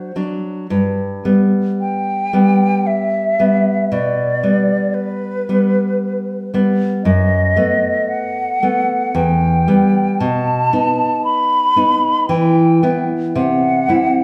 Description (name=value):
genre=romantic duo for flute and classical guitar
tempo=57 BPM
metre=3/4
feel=rubato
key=G major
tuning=A4 = 442 Hz
part: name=hollow concert flute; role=melody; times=0.0-14.2 s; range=B4 to B5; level=-20 LUFS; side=equal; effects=none
part: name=nylon-string guitar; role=accompaniment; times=0.0-14.2 s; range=E2 to E4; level=-18 LUFS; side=equal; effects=none
room=wet recital hall reverb, RT60 1.3 s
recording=recorded in a church or concert hall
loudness=-16 LUFS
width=mono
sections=0.0-14.2 A section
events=none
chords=0.0 D7; 0.7 G; 3.9 G/B; 7.0 B7/F#; 9.1 Em; 10.2 B7; 12.3 Em; 13.3 C